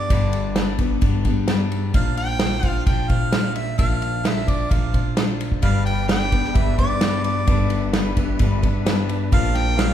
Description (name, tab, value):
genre	folk rock and heartland rock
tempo	130 BPM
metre	4/4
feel	straight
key	unclear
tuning	A4 = 441 Hz
part	warm harmonica	melody	0.0-9.9 s	D5 to G5	-26 LUFS	right 1 dB	none
part	picked steel-string acoustic guitar	accompaniment	0.0-9.9 s	G2 to C5	-27 LUFS	left 6 dB	none
part	upright bass	bass	0.0-9.9 s	G1 to Bb2	-24 LUFS	equal	none
part	unplugged drum kit	drums	0.1-9.9 s	kick drum, ride cymbal, snare drum	-21 LUFS	right 1 dB	none
part	tonewheel organ	sustained chords	5.6-9.9 s	F3 to E5	-33 LUFS	right 1 dB	slow rotary speaker, overdrive
room	moderate scoring stage reverb, RT60 1.8 s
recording	recorded in a church or concert hall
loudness	-18 LUFS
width	side -10 dB against mid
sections	0.0-9.9 A section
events	none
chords	0.0 G; 2.0 Bbadd9; 5.6 G; 9.3 Bbadd9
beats	| 0.10 0.57 1.03 1.49 | 1.95 2.41 2.87 3.33 | 3.80 4.26 4.72 5.18 | 5.64 6.10 6.56 7.02 | 7.49 7.95 8.41 8.87 | 9.33 9.79